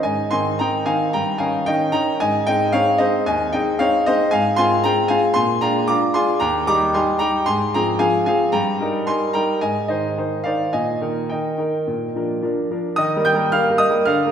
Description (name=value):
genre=classical-period piano sonatina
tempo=112 BPM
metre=4/4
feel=rubato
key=Ab major, Eb major from 4.3 s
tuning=A4 = 440 Hz
part: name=clear concert grand piano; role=solo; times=0.0-14.3 s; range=Eb2 to G6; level=-17 LUFS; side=equal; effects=none
room=wet concert hall reverb, RT60 2.0 s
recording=recorded in a church or concert hall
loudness=-17 LUFS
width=side -8 dB against mid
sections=0.0-13.0 A section; 13.0-14.3 B section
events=none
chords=0.0 Ab; 1.1 Eb7/G; 2.2 Ab; 4.3 Fm/Ab; 5.4 Bb7; 6.4 Eb; 7.5 Fm/Ab; 8.5 Eb/G; 9.6 Ab; 10.7 Eb/Bb; 11.9 Bb; 13.0 Eb